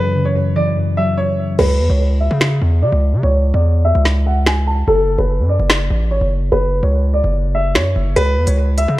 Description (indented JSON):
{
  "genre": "hip hop, drill",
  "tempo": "146 BPM",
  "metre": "4/4",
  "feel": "half-time",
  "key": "C# phrygian",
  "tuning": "A4 = 443 Hz",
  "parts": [
    { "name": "warm upright piano", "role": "melody", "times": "0.0-9.0 s", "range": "A4 to A5", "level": "-19 LUFS", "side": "equal", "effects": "low-pass filter, digital delay" },
    { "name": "muted felt-like synth keys", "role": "accompaniment", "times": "0.0-1.6 s", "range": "F#2 to F#3", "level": "-17 LUFS", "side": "left 1 dB", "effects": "chorus" },
    { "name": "distorted 808-style bass", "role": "bass", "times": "1.6-9.0 s", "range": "F#1 to C#3", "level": "-15 LUFS", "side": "equal", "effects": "distortion" },
    { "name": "drill drum kit", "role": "drums", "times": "1.6-8.9 s", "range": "crash cymbal, finger snaps, hi-hat, snare drum", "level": "-18 LUFS", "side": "equal", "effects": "none" }
  ],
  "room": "light reverb",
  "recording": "dark, warm production",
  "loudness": "-13 LUFS",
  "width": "side -16 dB against mid",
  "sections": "0.0-1.6 A section; 1.6-9.0 B section",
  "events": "break 0.0-1.6; hi-hats muted 1.6-8.2; filter sweep on upright piano 1.6-8.2",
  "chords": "0.0 F#7(no3); 1.6 C#m; 4.9 F#5; 8.2 C#m"
}